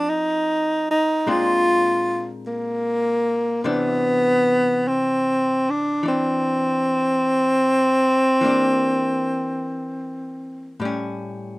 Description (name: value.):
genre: jazz.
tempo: 50 BPM.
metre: 4/4.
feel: swing 69% on 8ths.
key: C major.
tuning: A4 = 441 Hz.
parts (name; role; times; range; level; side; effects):
breathy tenor saxophone; melody; 0.0-10.8 s; Bb3 to F4; -18 LUFS; equal; none.
archtop guitar, miked and amplified; accompaniment; 0.0-11.6 s; A2 to Ab4; -29 LUFS; left 2 dB; none.
room: moderate studio reverb, RT60 0.6 s.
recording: rough home demo mix.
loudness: -18 LUFS.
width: side -21 dB against mid.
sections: 0.0-11.6 A section.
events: none.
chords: 0.0 Fm; 1.3 Bb9; 3.6 Cmaj9; 8.4 Em7b5; 10.8 A7.